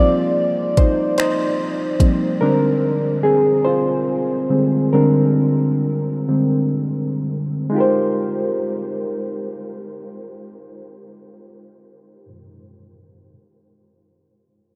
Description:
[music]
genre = slow six-eight R&B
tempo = 39-49 BPM (dotted quarters)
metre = 6/8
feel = straight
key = Ab lydian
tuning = A4 = 440 Hz
[part]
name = barky reed electric piano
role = accompaniment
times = 0.0-13.3 s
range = D3 to D5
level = -19 LUFS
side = equal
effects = overdrive, lush chorus
[part]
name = smooth R&B drum kit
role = drums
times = 0.8-2.2 s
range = finger snaps, hi-hat, kick drum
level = -20 LUFS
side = equal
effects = none
[sound]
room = wet huge ambient reverb, RT60 7.7 s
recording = dreamy mix soaked in reverb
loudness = -19 LUFS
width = mono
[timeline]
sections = 0.0-7.7 A section; 7.7-10.8 B section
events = reed electric piano solo 0.0-7.7; slowing down 2.4-7.7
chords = 0.0 Abmaj13; 2.4 Bb13; 7.7 Abmaj13

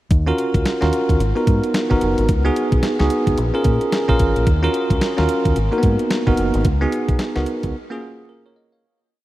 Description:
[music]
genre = R&B, new jack swing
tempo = 110 BPM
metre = 4/4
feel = swing 60% on 16ths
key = Eb minor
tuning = A4 = 439 Hz
[part]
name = deep dub fingered electric bass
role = bass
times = 0.1-7.7 s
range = Gb1 to Bb2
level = -20 LUFS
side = equal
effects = none
[part]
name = clean 12-bit digital drum machine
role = drums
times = 0.1-7.7 s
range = hi-hat, kick drum, snare drum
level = -21 LUFS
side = equal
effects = none
[part]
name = bell-like tine electric piano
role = accompaniment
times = 0.3-9.0 s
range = Bb3 to F5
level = -19 LUFS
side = right 1 dB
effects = medium stereo tremolo
[sound]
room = moderate huge ambient reverb, RT60 7.9 s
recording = dreamy mix soaked in reverb, vinyl crackle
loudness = -16 LUFS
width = side -16 dB against mid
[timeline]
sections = 0.1-8.8 verse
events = fade-out 6.7-8.8; break 7.7-8.8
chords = 0.1 Ebm7; 1.2 Abm7; 2.3 Db9sus4; 3.4 Bbm7; 4.5 Ebm7; 5.6 Abm7; 6.7 Db9sus4; 7.7 Bbm7

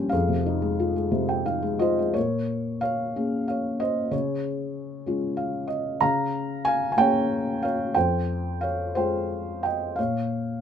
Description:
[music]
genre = classical, lyrical solo piano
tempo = 58-64 BPM (dotted quarters)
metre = 6/8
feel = rubato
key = unclear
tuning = A4 = 440 Hz
[part]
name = felt-muted upright piano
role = solo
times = 0.0-10.6 s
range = F2 to Bb5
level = -23 LUFS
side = equal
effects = none
[sound]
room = light reverb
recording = close, detailed microphones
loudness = -23 LUFS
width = side -8 dB against mid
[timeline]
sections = 0.0-2.2 A section; 2.2-10.6 B section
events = felt piano fill 1.1-2.2, 5.1-6.0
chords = 0.1 Fm9; 2.2 Bbm7; 4.1 Db; 6.0 Bbm7/Db; 8.0 Fmadd9; 10.0 Bbm

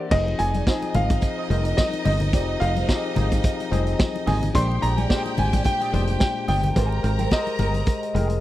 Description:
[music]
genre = disco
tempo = 108 BPM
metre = 4/4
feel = swing 56% on 16ths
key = F dorian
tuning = A4 = 441 Hz
[part]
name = warm concert grand piano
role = melody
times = 0.0-8.4 s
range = D5 to C6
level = -28 LUFS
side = equal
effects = none
[part]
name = barky tine electric piano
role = accompaniment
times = 0.0-8.4 s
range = Bb2 to Gb5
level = -29 LUFS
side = left 6 dB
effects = overdrive
[part]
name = mellow electric guitar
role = accompaniment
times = 0.0-8.4 s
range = Eb4 to Ab5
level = -34 LUFS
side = right 5 dB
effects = wah
[part]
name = warm studio violin section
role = second line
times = 0.1-8.4 s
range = Eb4 to Bb5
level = -31 LUFS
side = right 2 dB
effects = none
[part]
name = fingered electric bass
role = bass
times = 0.1-8.4 s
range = F1 to Bb1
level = -23 LUFS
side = equal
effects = none
[part]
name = vintage drum kit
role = drums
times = 0.1-8.4 s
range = crash cymbal, hi-hat, kick drum, snare drum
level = -22 LUFS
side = right 1 dB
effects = none
[part]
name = congas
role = percussion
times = 0.1-8.3 s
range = none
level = -30 LUFS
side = left 4 dB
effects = none
[sound]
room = little or no reverb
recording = dry, close 1970s-style studio recording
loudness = -20 LUFS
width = side -14 dB against mid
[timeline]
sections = 0.1-8.4 A section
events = none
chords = 0.1 Fm7; 4.5 Bb13; 6.8 Abmaj9

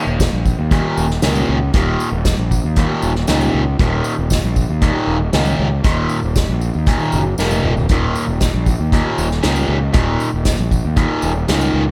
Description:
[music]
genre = psychedelic rock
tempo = 117 BPM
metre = 4/4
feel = straight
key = unclear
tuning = A4 = 440 Hz
[part]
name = fuzz guitar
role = riff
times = 0.0-11.8 s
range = Eb2 to Eb3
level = -22 LUFS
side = equal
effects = distortion, phaser
[part]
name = fuzz fingered electric bass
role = bass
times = 0.1-11.9 s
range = Eb1 to Eb2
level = -21 LUFS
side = equal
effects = overdrive
[part]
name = soft-mallet drum kit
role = drums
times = 0.2-11.6 s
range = hi-hat, kick drum, snare drum, toms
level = -20 LUFS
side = equal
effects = none
[part]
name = tambourine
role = percussion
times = 0.2-11.7 s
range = none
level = -36 LUFS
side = equal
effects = none
[sound]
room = light reverb, small room reverb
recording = none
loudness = -17 LUFS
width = mono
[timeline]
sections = 0.0-11.9 A section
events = drum fill 7.4-7.9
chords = 0.0 Eb7(no3)

